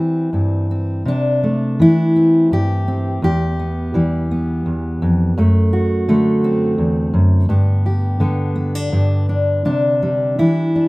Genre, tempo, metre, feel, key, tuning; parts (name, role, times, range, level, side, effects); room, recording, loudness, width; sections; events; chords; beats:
folk, solo fingerstyle acoustic guitar; 84 BPM; 3/4; straight; C major; A4 = 438 Hz
fingerpicked steel-string acoustic guitar; solo; 0.0-10.9 s; E2 to G4; -14 LUFS; equal
moderate studio reverb, RT60 0.6 s; rough home demo mix; -14 LUFS; side -22 dB against mid
0.0-1.1 A section; 1.1-10.9 B section
0.0 C; 1.1 C6; 3.2 Em; 5.4 D7/F#; 7.5 G; 9.7 Cadd9
0.33 | 1.06 1.79 2.52 | 3.23 3.95 4.66 | 5.37 6.07 6.78 | 7.49 8.21 8.93 | 9.66 10.38